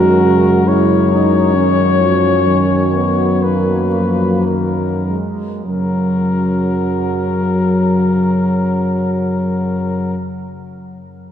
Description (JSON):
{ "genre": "classical, hymn-like piece for brass band", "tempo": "49-72 BPM", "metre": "4/4", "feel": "rubato", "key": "F# major", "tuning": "A4 = 439 Hz", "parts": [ { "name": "warm cornet", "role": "melody", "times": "0.0-10.2 s", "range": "A#4 to C#5", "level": "-21 LUFS", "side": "left 8 dB", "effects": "none" }, { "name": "warm French horn section", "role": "second line", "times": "0.0-10.2 s", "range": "F#3 to F#4", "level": "-18 LUFS", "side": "right 3 dB", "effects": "none" }, { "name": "mellow euphonium", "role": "accompaniment", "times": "0.0-10.1 s", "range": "D#3 to G#3", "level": "-22 LUFS", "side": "left 2 dB", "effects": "none" }, { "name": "mellow trombone", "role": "accompaniment", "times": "0.0-10.2 s", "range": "C#3 to F#3", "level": "-26 LUFS", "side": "right 2 dB", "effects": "none" }, { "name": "warm tuba", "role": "bass", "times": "0.0-10.2 s", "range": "F#2", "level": "-17 LUFS", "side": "left 1 dB", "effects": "none" } ], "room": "wet cathedral reverb, RT60 5.1 s", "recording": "minimal, uncompressed stereo recording", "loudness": "-13 LUFS", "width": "side -9 dB against mid", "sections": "0.0-5.7 A section; 5.7-10.1 B section", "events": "slowing down 0.0-5.7", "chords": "0.0 F#7; 1.6 B/F#; 5.7 F#" }